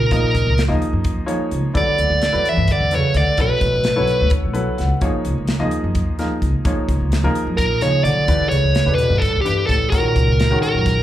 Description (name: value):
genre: electric jazz fusion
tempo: 257 BPM (eighths)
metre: 7/8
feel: straight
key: unclear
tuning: A4 = 440 Hz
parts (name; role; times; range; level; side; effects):
- dark smooth lead guitar; melody; 0.0-4.3, 7.6-11.0 s; G4 to E5; -19 LUFS; right 1 dB; overdrive, slapback echo
- mellow bass clarinet; second line; 0.0-4.3, 7.6-11.0 s; G2 to E3; -21 LUFS; equal; none
- clear concert grand piano; accompaniment; 0.0-11.0 s; Eb3 to F#5; -24 LUFS; left 1 dB; slapback echo
- upright bass; bass; 0.1-11.0 s; A1 to G2; -21 LUFS; equal; none
- modern studio drum kit; drums; 0.1-11.0 s; hi-hat, kick drum, snare drum; -23 LUFS; equal; none
room: light reverb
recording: live gig heard through the venue's PA, club reverb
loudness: -15 LUFS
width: side -12 dB against mid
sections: 0.0-11.0 A section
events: grand piano fill 4.3-5.0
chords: 0.0 Ebm9; 1.7 Em9; 3.4 Bm9; 5.0 Ebm9; 8.3 Em7; 9.9 Ebm7